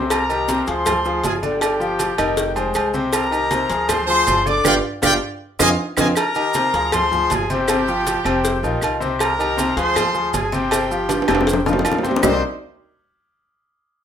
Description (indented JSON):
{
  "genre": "latin, salsa",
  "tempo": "158 BPM",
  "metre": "4/4",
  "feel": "straight",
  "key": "C minor",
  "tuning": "A4 = 440 Hz",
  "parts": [
    { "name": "bright concert grand piano", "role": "accompaniment", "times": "0.0-12.4 s", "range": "C3 to Eb5", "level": "-22 LUFS", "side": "left 2 dB", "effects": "none" },
    { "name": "upright bass", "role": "bass", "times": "0.0-12.4 s", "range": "F1 to F2", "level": "-29 LUFS", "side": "right 1 dB", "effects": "none" },
    { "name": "bright trumpet section", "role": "melody", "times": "0.1-12.4 s", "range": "G4 to D6", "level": "-21 LUFS", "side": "equal", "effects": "none" },
    { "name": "agogo bells and timbales", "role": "percussion", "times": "0.1-12.3 s", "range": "none", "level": "-24 LUFS", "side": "right 5 dB", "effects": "none" },
    { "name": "claves", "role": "percussion", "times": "0.1-12.3 s", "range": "none", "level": "-31 LUFS", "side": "right 3 dB", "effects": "none" },
    { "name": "congas", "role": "percussion", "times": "0.1-12.3 s", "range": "none", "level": "-31 LUFS", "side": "right 1 dB", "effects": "none" },
    { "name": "cowbell and bongos", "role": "percussion", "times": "0.1-12.3 s", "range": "none", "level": "-25 LUFS", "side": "left 5 dB", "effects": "none" },
    { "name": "maracas", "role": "percussion", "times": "0.1-12.3 s", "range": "none", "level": "-29 LUFS", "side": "right 6 dB", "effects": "none" }
  ],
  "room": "wet studio reverb, RT60 0.7 s",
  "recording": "rough home demo mix",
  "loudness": "-16 LUFS",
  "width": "side -8 dB against mid",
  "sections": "0.0-6.2 A section; 6.2-12.2 B section; 12.2-13.7 C section",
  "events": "drum fill 4.6-6.2, 11.1-12.2; band accent 4.6-6.2",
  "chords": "0.1 Cm9; 0.9 Dm7b5; 1.6 G5; 2.4 Fm9; 3.1 Cm9; 3.9 Dm7b5; 4.6 G5; 5.4 Fm7; 6.2 Cm9; 6.9 Dm7b5; 7.7 G7sus4; 8.4 Fsus2; 9.2 Cm9; 10.0 Dm7b5; 10.7 G7sus4; 11.5 Fsus2; 12.2 Cm9"
}